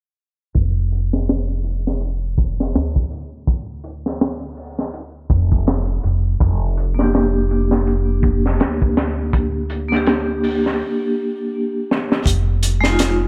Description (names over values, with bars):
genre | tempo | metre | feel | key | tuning
trip hop | 82 BPM | 4/4 | swing 57% on 16ths | unclear | A4 = 441 Hz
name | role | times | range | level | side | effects
crunchy breakbeat drum kit | drums | 0.5-13.2 s | hi-hat, kick drum, snare drum | -22 LUFS | equal | low-pass filter on kick, low-pass filter on hats, low-pass filter on snare, low-pass filter on room
upright bass | bass | 0.6-13.3 s | F1 to D2 | -23 LUFS | equal | none
vibraphone with medium hard mallets | accompaniment | 6.9-13.3 s | Ab3 to G4 | -22 LUFS | equal | tremolo, tape echo
room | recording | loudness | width
small room ambience | low-pass filter | -19 LUFS | mono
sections
0.6-12.3 A section; 12.3-13.3 B section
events
filter sweep 0.6-12.3; break 10.8-12.3; drum fill 11.9-12.3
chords
0.6 Dm/F; 6.4 Gm/F; 12.3 Fm7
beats
| 0.55 1.28 2.02 2.75 | 3.48 4.21 4.94 5.67 | 6.41 7.14 7.87 8.60 | 9.33 10.06 10.80 11.53 | 12.26 12.99